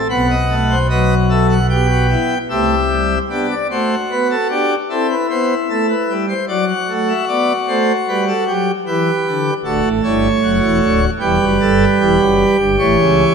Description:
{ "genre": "classical, baroque-style 4-part fugue for pipe organ", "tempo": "76 BPM", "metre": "4/4", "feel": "straight", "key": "G major from 3.3 s", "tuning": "A4 = 441 Hz", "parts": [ { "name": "pipe organ, plenum", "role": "solo", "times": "0.0-13.3 s", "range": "D1 to G5", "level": "-13 LUFS", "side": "equal", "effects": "none" } ], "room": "wet scoring stage reverb, RT60 2.1 s", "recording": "none", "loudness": "-13 LUFS", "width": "side -6 dB against mid", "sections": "0.0-3.3 A section; 3.3-13.3 B section", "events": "none", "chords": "0.1 B7; 1.7 Em/B; 3.3 G; 4.9 Am7; 6.5 D7/F#; 8.1 G; 9.6 D; 11.2 Em; 12.8 A7" }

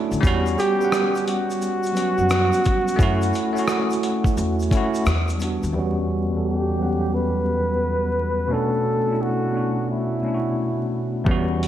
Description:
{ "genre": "lo-fi hip hop", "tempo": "87 BPM", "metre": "4/4", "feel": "swing 66% on 16ths", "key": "E dorian", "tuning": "A4 = 440 Hz", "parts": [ { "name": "bell-like tine electric piano", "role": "accompaniment", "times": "0.0-11.7 s", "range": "E2 to F#5", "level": "-22 LUFS", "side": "equal", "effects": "medium stereo tremolo, low-pass filter" }, { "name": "upright bass", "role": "bass", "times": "0.1-5.7 s", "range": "D#2 to F#2", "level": "-23 LUFS", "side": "equal", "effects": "none" }, { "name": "dusty soul sampler-style drum kit", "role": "drums", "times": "0.1-5.7, 11.3-11.7 s", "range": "hi-hat, kick drum, rim click, shaker", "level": "-25 LUFS", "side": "equal", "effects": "none" }, { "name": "tube shaker", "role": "percussion", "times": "0.1-5.7 s", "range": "none", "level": "-45 LUFS", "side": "left 7 dB", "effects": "none" }, { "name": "breathy flugelhorn", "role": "melody", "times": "0.6-10.9 s", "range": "E4 to B4", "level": "-24 LUFS", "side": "equal", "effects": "low-pass filter, diffuse ambient delay" } ], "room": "wet lush hall reverb, RT60 2.3 s", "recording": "dreamy mix soaked in reverb, vinyl crackle", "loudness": "-19 LUFS", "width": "side -11 dB against mid", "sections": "0.0-5.7 A section; 5.7-11.7 B section", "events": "filter sweep 5.7-11.7", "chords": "0.2 Em69 (rootless); 3.0 F#m7; 5.1 Em9; 5.7 Em69; 8.5 Bm7" }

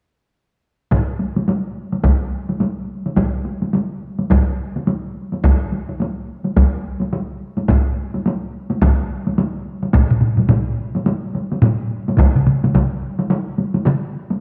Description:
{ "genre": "japanese traditional, taiko drum ensemble", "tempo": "107 BPM", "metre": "4/4", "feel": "swing 60% on 16ths", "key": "none", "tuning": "none", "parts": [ { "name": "taiko ensemble", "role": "percussion", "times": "0.9-14.4 s", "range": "none", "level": "-23 LUFS", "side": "equal", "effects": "none" }, { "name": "taiko ensemble", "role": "percussion", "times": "0.9-12.9 s", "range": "none", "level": "-21 LUFS", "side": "equal", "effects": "none" }, { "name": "solo taiko drums", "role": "percussion", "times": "9.9-11.8 s", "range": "none", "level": "-19 LUFS", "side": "equal", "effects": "none" }, { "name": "taiko ensemble", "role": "percussion", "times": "12.2-14.0 s", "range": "none", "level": "-20 LUFS", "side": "equal", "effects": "none" } ], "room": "wet echo chamber reverb, RT60 1.8 s, small room ambience", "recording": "none", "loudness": "-19 LUFS", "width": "mono", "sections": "0.9-9.9 A section; 9.9-14.4 B section", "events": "none", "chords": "none" }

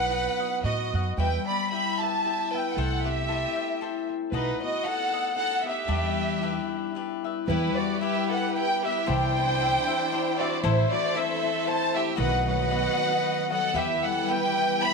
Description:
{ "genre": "mexican folk, mariachi", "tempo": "114 BPM", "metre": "3/4", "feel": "swing 54% on 8ths, rubato", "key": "E minor", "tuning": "A4 = 440 Hz", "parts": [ { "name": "warm symphonic violin section", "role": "melody", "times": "0.0-14.9 s", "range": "B4 to B5", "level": "-27 LUFS", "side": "equal", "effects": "none" }, { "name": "rich violin", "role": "second line", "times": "0.0-14.9 s", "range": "D#4 to E5", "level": "-32 LUFS", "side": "right 15 dB", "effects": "none" }, { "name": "cavaquinho", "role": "accompaniment", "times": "0.0-14.9 s", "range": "D4 to G5", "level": "-34 LUFS", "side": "left 11 dB", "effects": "none" }, { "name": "concert harp", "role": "arpeggios", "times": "0.0-14.9 s", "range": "D#3 to A4", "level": "-32 LUFS", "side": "left 10 dB", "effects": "tape echo" }, { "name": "upright bass", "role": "bass", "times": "0.0-13.9 s", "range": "A1 to A2", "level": "-28 LUFS", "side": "right 2 dB", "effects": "none" }, { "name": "warm symphonic violin section", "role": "sustained chords", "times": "7.5-14.9 s", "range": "A3 to D#5", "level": "-34 LUFS", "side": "right 3 dB", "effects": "none" } ], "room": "moderate echo chamber reverb, RT60 1.4 s, studio ambience", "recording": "1960s-style stereo with parts hard left and right", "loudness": "-24 LUFS", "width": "side -4 dB against mid", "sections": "0.0-7.5 A section; 7.5-14.9 A section", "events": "none", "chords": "0.0 B; 1.2 Em; 2.8 C6; 4.3 B7; 5.9 Em7; 7.5 Em; 9.1 Cadd9; 10.6 Am; 12.2 B; 13.7 Em" }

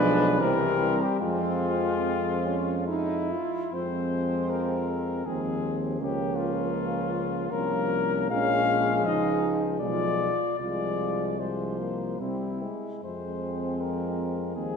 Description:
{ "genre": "classical, hymn-like piece for brass band", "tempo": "67-82 BPM", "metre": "3/4", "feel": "rubato", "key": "F minor", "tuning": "A4 = 441 Hz", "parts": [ { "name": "dark cornet", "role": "melody", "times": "0.0-14.8 s", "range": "E4 to F5", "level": "-30 LUFS", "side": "left 7 dB", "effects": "none" }, { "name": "mellow French horn section", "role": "second line", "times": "0.0-14.8 s", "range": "C4 to F4", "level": "-31 LUFS", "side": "right 4 dB", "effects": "none" }, { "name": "warm euphonium", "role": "accompaniment", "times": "0.0-14.8 s", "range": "G3 to C4", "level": "-32 LUFS", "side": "left 2 dB", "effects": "none" }, { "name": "warm trombone", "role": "accompaniment", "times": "0.0-14.8 s", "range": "E3 to G3", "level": "-35 LUFS", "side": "right 3 dB", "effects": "none" }, { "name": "warm tuba", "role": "bass", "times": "0.0-14.8 s", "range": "Bb1 to F2", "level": "-32 LUFS", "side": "equal", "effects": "none" } ], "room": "wet concert hall reverb, RT60 1.8 s", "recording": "none", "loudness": "-25 LUFS", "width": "side -6 dB against mid", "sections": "0.0-3.7 A section; 3.7-14.8 B section", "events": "none", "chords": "0.4 C7; 1.2 Fm; 6.0 Bbm/Db; 8.3 Bbm7; 9.8 Bdim7; 10.6 Fm/C; 12.2 C; 13.0 Fm" }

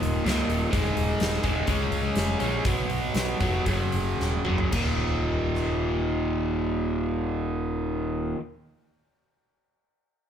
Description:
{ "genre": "classic rock", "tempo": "108-128 BPM", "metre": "4/4", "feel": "straight", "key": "unclear", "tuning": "A4 = 441 Hz", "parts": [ { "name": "overdriven electric guitar", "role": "riff", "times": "0.0-8.4 s", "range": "Eb2 to Db4", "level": "-26 LUFS", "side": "equal", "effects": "none" }, { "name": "fuzz picked electric bass", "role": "bass", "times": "0.0-8.3 s", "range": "Eb1 to Db2", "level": "-30 LUFS", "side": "equal", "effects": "overdrive" }, { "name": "huge arena drum kit", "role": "drums", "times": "0.0-5.7 s", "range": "crash cymbal, hi-hat, kick drum, rim click, snare drum, toms", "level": "-30 LUFS", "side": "equal", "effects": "none" } ], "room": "moderate studio reverb, RT60 1.0 s", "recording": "band playing live in one room", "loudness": "-24 LUFS", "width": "side -8 dB against mid", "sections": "0.0-4.7 A section; 4.7-9.2 B section", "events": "slowing down 0.7-4.7; drum fill 4.2-4.7", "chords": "0.0 Eb5; 0.7 Ab5/Eb; 1.7 Db; 2.6 B5; 3.7 Gb5; 4.7 Eb5" }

